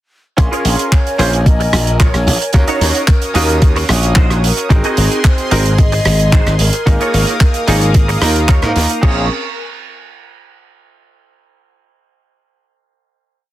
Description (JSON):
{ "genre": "nu-disco, nu disco", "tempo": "111 BPM", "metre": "4/4", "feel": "straight", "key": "Bb minor", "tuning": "A4 = 440 Hz", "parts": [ { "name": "breathy mellow concert flute", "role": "melody", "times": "0.4-8.4 s", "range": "Ab4 to Eb5", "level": "-22 LUFS", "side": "left 1 dB", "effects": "analog delay" }, { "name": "bright concert grand piano", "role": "accompaniment", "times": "0.4-9.2 s", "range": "Bb3 to C6", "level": "-20 LUFS", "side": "right 1 dB", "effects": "sidechain pumping, slapback echo" }, { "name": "lush unison pad", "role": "sustained chords", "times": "0.4-9.3 s", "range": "Ab4 to Eb6", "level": "-24 LUFS", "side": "equal", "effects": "chorus, phaser, sidechain pumping" }, { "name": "direct-recorded clean electric guitar", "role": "riff", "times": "0.4-9.3 s", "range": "Eb4 to Eb5", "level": "-21 LUFS", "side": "right 2 dB", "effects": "ensemble chorus, slapback echo" }, { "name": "glassy slap bass", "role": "bass", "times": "0.4-9.3 s", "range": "Ab1 to Ab2", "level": "-14 LUFS", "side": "equal", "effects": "none" }, { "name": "damped 70s drum kit", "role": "drums", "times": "0.4-9.1 s", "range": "crash cymbal, handclaps, hi-hat, rim click", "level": "-20 LUFS", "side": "right 3 dB", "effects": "soft clipping on snare" }, { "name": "electronic kick drum", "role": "drums", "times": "0.4-9.1 s", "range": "none", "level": "-10 LUFS", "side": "equal", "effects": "overdrive" } ], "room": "small room ambience", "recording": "dense, heavily limited modern master", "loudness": "-10 LUFS", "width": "side -14 dB against mid", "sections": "0.4-9.0 drop; 9.0-11.2 final chord", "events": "drop 0.4-9.0", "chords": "0.4 Bbm7; 2.5 Ebm7; 4.7 Ab7; 6.9 Db69/Ab; 9.0 Bbm7", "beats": "| 0.38 0.92 1.46 2.00 | 2.54 3.08 3.62 4.16 | 4.70 5.24 5.79 6.33 | 6.87 7.41 7.95 8.49 | 9.03" }